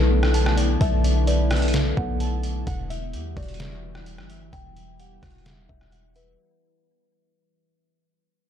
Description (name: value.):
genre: hip hop, atmospheric cloud-rap.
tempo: 129 BPM.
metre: 4/4.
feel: half-time.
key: E minor.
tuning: A4 = 436 Hz.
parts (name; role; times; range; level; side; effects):
glassy FM pad; sustained chords; 0.0-6.4 s; D3 to E4; -28 LUFS; left 1 dB; ensemble chorus, built-in reverb, sidechain pumping.
glassy digital keys; arpeggios; 0.0-6.4 s; G3 to A5; -34 LUFS; left 1 dB; chorus, low-pass filter, ping-pong delay.
warm 808-style bass; bass; 0.0-6.4 s; E1 to E2; -23 LUFS; equal; none.
trip hop sampler-style drum kit; drums; 0.2-6.3 s; hi-hat, kick drum, rim click, snare drum; -28 LUFS; equal; overdrive.
kalimba; melody; 0.8-6.4 s; B4 to G5; -32 LUFS; left 4 dB; low-pass filter, ping-pong delay.
room: digital ambience.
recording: dark, warm production.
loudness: -20 LUFS.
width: side -9 dB against mid.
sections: 0.0-6.4 A section.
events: fade-out 0.0-6.4.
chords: 0.0 Bm7; 2.7 Emadd9.